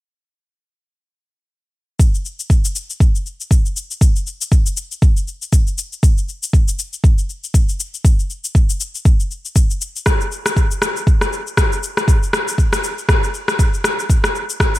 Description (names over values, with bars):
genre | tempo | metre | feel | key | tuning
house | 119 BPM | 4/4 | swing 57% on 16ths | none | none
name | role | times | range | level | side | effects
electronic cabasa and rim click | drums | 2.0-14.8 s | none | -21 LUFS | left 2 dB | gated reverb
electronic kick drum | drums | 2.0-14.7 s | none | -13 LUFS | equal | none
room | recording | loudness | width
digital ambience | bright 1980s-style digital production | -15 LUFS | side -17 dB against mid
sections
2.0-14.8 A section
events
none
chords
none